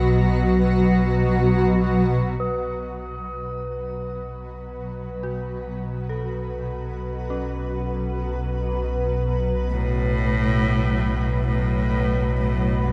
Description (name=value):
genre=dark ambient drone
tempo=free time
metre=none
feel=none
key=unclear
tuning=A4 = 441 Hz
part: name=granular cloud pad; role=sustained chords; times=0.0-12.9 s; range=B2 to B4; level=-26 LUFS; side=equal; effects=built-in reverb, shimmer reverb
part: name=deep rumbling drone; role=drone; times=0.0-12.9 s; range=B1 to B2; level=-27 LUFS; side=equal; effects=built-in reverb
part: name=bronze singing bowl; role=texture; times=2.4-12.9 s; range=B4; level=-37 LUFS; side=equal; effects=shimmer reverb
part: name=dark detuned synth bell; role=arpeggios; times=5.2-12.9 s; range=C#4 to A4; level=-41 LUFS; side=equal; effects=chorus, shimmer reverb, diffuse ambient delay
part: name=rich cello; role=melody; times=9.7-12.9 s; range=G2 to A2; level=-27 LUFS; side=equal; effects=diffuse ambient delay
room=wet cathedral reverb, RT60 5.7 s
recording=nothing above 10.9 kHz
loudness=-23 LUFS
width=mono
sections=0.0-2.4 A section; 2.4-12.9 B section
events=fade-in on ambient pad 2.4-12.9; fade-in on synth bell 2.4-12.9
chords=0.0 B5